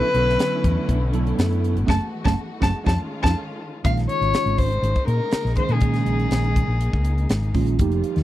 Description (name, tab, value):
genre	electric jazz fusion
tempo	122 BPM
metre	4/4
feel	straight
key	Bb dorian from 3.9 s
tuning	A4 = 441 Hz
part	dark violin	melody	0.0-7.6 s	Ab4 to A5	-25 LUFS	left 3 dB	none
part	bell-like tine electric piano	accompaniment	0.0-8.2 s	Eb3 to A4	-26 LUFS	right 7 dB	phaser
part	warm studio string section	sustained chords	0.0-8.2 s	Db3 to F#4	-31 LUFS	left 1 dB	none
part	hollow-body short-scale fingered electric bass	bass	0.1-8.2 s	F1 to Bb2	-22 LUFS	equal	none
part	tight funk drum kit	drums	0.1-8.2 s	hi-hat, kick drum, snare drum	-23 LUFS	equal	none
room	small room reverb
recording	dry, close 1970s-style studio recording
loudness	-19 LUFS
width	side -14 dB against mid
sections	0.0-3.9 A section; 3.9-8.2 B section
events	violin solo 0.0-3.9; band accent 1.9-3.9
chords	0.0 Bm11; 1.9 F#m11; 2.9 F7alt; 3.9 Bbm11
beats	0.39 0.89 1.38 | 1.87 2.37 2.86 3.36 | 3.85 4.34 4.84 5.33 | 5.83 6.32 6.81 7.30 | 7.80